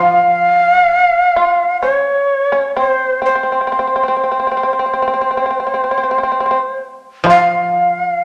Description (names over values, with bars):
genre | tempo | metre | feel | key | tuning
japanese traditional, Japanese chamber music | 62-67 BPM | 4/4 | rubato | unclear | A4 = 440 Hz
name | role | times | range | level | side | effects
breathy bright shakuhachi | melody | 0.0-8.2 s | C5 to F5 | -16 LUFS | equal | none
shamisen | second line | 0.0-8.2 s | C4 to F4 | -18 LUFS | equal | none
koto | accompaniment | 0.0-8.2 s | F3 | -24 LUFS | equal | none
room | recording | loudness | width
wet recital hall reverb, RT60 1.4 s | none | -14 LUFS | mono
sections
0.0-8.2 A section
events
none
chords
none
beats
0.87 1.82 2.76 | 3.68 4.57 5.47 6.37 | 7.27 8.17